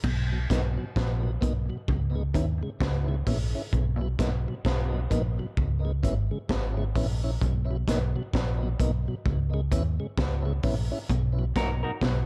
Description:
dub reggae; 65 BPM; 4/4; swing 60% on 16ths; B major; A4 = 440 Hz
mellow electric guitar; riff; 0.0-3.4, 11.1-12.3 s; A#2 to D#3; -36 LUFS; equal
vintage muted fingered electric bass; bass; 0.0-12.3 s; G#1 to D#2; -30 LUFS; equal
crunchy breakbeat drum kit; drums; 0.0-12.3 s; crash cymbal, hi-hat, kick drum, snare drum; -32 LUFS; equal
mellow tonewheel organ; accompaniment; 0.3-11.9 s; B2 to E4; -37 LUFS; equal; slow rotary speaker, tape echo
semi-hollow electric guitar; accompaniment; 11.6-11.9 s; D#4 to A#4; -34 LUFS; equal; tape echo
light reverb, small room ambience; echo-heavy mix; -28 LUFS; mono
0.0-12.3 A section
break 0.0-11.1
0.0 Bmaj7; 1.9 C#m7; 3.7 Bmaj7; 5.6 C#m7; 7.4 Bmaj7; 9.3 C#m7; 11.1 Bmaj7
| 0.04 0.96 1.88 2.80 | 3.72 4.64 5.57 6.49 | 7.41 8.33 9.25 10.17 | 11.09 12.01

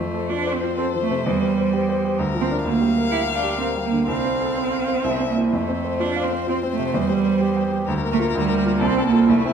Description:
quick classical-period movement for piano trio; 127 BPM; 3/4; straight; F major; A4 = 439 Hz
rich violin; melody; 0.0-9.5 s; E4 to F5; -28 LUFS; left 7 dB
rich cello; second line; 0.0-9.5 s; G3 to E4; -21 LUFS; right 5 dB
clear grand piano; accompaniment; 0.0-9.5 s; C2 to G5; -23 LUFS; left 1 dB
wet recital hall reverb, RT60 1.4 s; -19 LUFS; side -7 dB against mid
0.0-9.5 A section
0.0 F; 1.3 C/E; 2.2 Bb/D; 2.7 Gm7/D; 4.1 F/C; 5.0 C; 5.5 F; 6.9 C/E; 7.9 Bb/D; 8.8 F/C
0.31 0.78 | 1.25 1.73 2.19 | 2.65 3.12 3.60 | 4.08 4.56 5.04 | 5.52 6.00 6.47 | 6.95 7.42 7.88 | 8.35 8.82 9.30

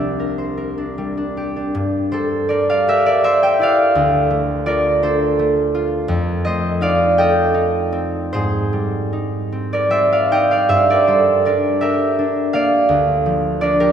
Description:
classical, solo harp piece; 50-57 BPM (dotted quarters); 6/8; rubato; G minor; A4 = 440 Hz
concert harp; solo; 0.0-13.9 s; C2 to G5; -15 LUFS; right 1 dB
wet church reverb, RT60 3.0 s; recorded in a church or concert hall; -15 LUFS; side -8 dB against mid
0.0-1.8 A section; 1.8-13.9 B section
0.0 C9; 1.8 Gm6; 4.0 Dm7; 6.1 F9; 8.3 Abmaj7; 10.7 Gm6; 12.9 Dm
0.58 | 1.76 2.88 | 3.97 5.04 | 6.09 7.17 | 8.34 9.53 | 10.71 11.82 | 12.88

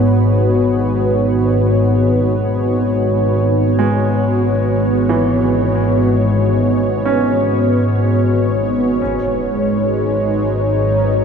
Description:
dark ambient drone; 46 BPM; 4/4; straight; A4 = 440 Hz
sweeping resonant pad; sustained chords; 0.0-11.2 s; G#3 to C#5; -16 LUFS; right 1 dB; chorus
bright baby grand piano; arpeggios; 0.0-11.2 s; E3 to C#4; -23 LUFS; right 3 dB; ping-pong delay
organ-like drone; drone; 0.0-11.2 s; G#1 to G#2; -17 LUFS; left 1 dB; ensemble chorus, built-in reverb
quartz singing bowl; texture; 0.0-11.2 s; barely audible
impact; percussion; 9.0-9.3 s; -37 LUFS; equal; low-pass filter on sfx
wet huge ambient reverb, RT60 8.8 s; -13 LUFS; side -6 dB against mid
0.0-9.0 A section; 9.0-11.2 B section
filter sweep on synth drone 9.0-11.2
0.0 B5; 9.0 G#m7
1.18 2.48 | 3.79 5.09 6.39 7.70 | 9.00 10.31

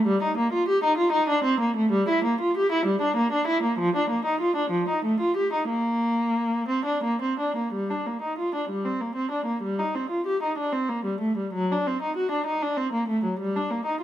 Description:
classical, baroque-style suite movement for unaccompanied viola; 56-66 BPM (dotted quarters); 6/8; rubato; Bb major, G minor from 7.7 s; A4 = 439 Hz
warm viola; solo; 0.0-14.0 s; F3 to G4; -23 LUFS; equal
moderate recital hall reverb, RT60 1.5 s; close, detailed microphones; -23 LUFS; side -12 dB against mid
0.0-7.7 A section; 7.7-14.0 A section
| 0.06 0.98 | 1.92 2.86 | 3.78 4.71 | 5.69 6.69 | 7.73 8.70 | 9.63 10.57 | 11.53 12.47 | 13.39

